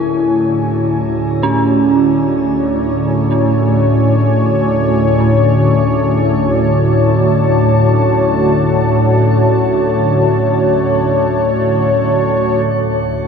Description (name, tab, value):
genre	dark ambient drone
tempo	free time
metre	none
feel	none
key	unclear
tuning	A4 = 443 Hz
part	dark analog pad	sustained chords	0.0-13.3 s	F#4 to A5	-16 LUFS	left 1 dB	chorus, shimmer reverb
part	dark detuned synth bell	arpeggios	0.0-12.7 s	C#4 to A4	-18 LUFS	right 2 dB	chorus, phaser, tape echo, shimmer reverb
part	organ-like drone	drone	0.0-13.3 s	D2 to A2	-14 LUFS	equal	ensemble chorus, built-in reverb
room	wet cathedral reverb, RT60 6.5 s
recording	in a vast, echoing space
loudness	-11 LUFS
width	side -6 dB against mid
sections	0.0-12.7 A section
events	filter sweep on synth drone 0.0-12.7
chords	0.0 F#m